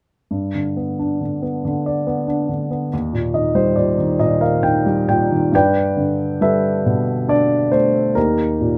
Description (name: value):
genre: classical, lyrical solo piano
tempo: 69 BPM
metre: 3/4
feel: rubato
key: unclear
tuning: A4 = 440 Hz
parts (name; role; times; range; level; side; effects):
- dark baby grand piano; solo; 0.3-8.8 s; Eb2 to G5; -18 LUFS; equal; none
room: light reverb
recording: none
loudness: -18 LUFS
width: mono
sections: 0.3-5.5 A section; 5.5-8.8 B section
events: grand piano fill 2.9-5.5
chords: 0.3 G; 2.9 Eb; 5.5 Gadd9; 8.2 Eb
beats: | 0.31 1.21 2.08 | 2.92 3.77 4.65 | 5.54 6.42 7.29 | 8.16